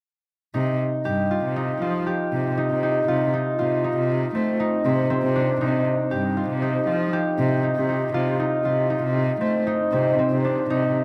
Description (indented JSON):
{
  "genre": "contemporary instrumental, contemporary",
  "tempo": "118 BPM",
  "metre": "5/4",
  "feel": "straight",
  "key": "C minor",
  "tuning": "A4 = 440 Hz",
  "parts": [
    { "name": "concert harp", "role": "arpeggios", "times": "0.5-11.0 s", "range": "C4 to G4", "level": "-25 LUFS", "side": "equal", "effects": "none" },
    { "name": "warm cello", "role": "bass", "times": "0.6-10.9 s", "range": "G2 to A3", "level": "-27 LUFS", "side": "equal", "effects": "none" }
  ],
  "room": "wet huge ambient reverb, RT60 8.3 s",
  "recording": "in a vast, echoing space",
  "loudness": "-23 LUFS",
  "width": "mono",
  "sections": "0.5-11.0 A section",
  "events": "none",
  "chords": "0.5 Cm; 3.1 F7(no3)/C; 5.6 Cm; 8.1 F7(no3)/C"
}